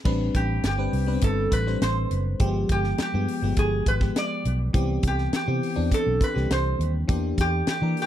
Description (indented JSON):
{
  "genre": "polished 1980s jazz-funk pop",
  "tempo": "102 BPM",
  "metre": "4/4",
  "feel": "straight",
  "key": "A minor",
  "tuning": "A4 = 442 Hz",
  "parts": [
    { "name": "FM electric piano", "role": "accompaniment", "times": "0.0-8.1 s", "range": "E3 to C5", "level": "-28 LUFS", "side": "left 3 dB", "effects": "wide subtle chorus" },
    { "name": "vintage muted fingered electric bass", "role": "bass", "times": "0.1-7.9 s", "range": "F#1 to E3", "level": "-25 LUFS", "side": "equal", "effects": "none" },
    { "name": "tight funk drum kit", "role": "drums", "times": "0.1-8.1 s", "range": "crash cymbal, hi-hat, kick drum, snare drum", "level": "-25 LUFS", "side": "equal", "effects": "none" },
    { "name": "metal-body resonator slide guitar", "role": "melody", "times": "0.4-8.1 s", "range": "G4 to D5", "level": "-28 LUFS", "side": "right 2 dB", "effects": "none" }
  ],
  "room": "little or no reverb",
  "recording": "dry, close 1970s-style studio recording",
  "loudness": "-22 LUFS",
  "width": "side -11 dB against mid",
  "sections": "0.1-8.1 A section",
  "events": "none",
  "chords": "0.1 Am11; 2.4 G7b9; 4.7 Cmaj7; 7.1 Em7b5"
}